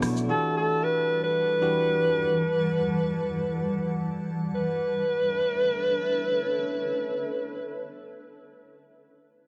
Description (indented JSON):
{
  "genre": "amapiano",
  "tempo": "free time",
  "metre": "none",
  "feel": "none",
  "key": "B minor",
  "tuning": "A4 = 436 Hz",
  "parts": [
    { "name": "bell-like tine electric piano", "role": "accompaniment", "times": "0.0-2.4 s", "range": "B2 to B4", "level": "-31 LUFS", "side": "equal", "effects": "none" },
    { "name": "granular cloud pad", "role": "sustained chords", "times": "0.0-7.9 s", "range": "E3 to D6", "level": "-34 LUFS", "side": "equal", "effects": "built-in reverb" },
    { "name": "warm alto saxophone", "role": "melody", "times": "0.3-7.9 s", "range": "A4 to B4", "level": "-28 LUFS", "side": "equal", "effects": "tape echo" }
  ],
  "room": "light reverb",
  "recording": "worn, warbling old tape, cassette tape, warbly pitch drift",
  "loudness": "-26 LUFS",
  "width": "mono",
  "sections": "0.0-4.5 A section; 4.5-8.8 B section",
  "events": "drop 0.0-4.5",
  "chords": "0.3 Em11; 4.5 Bm11"
}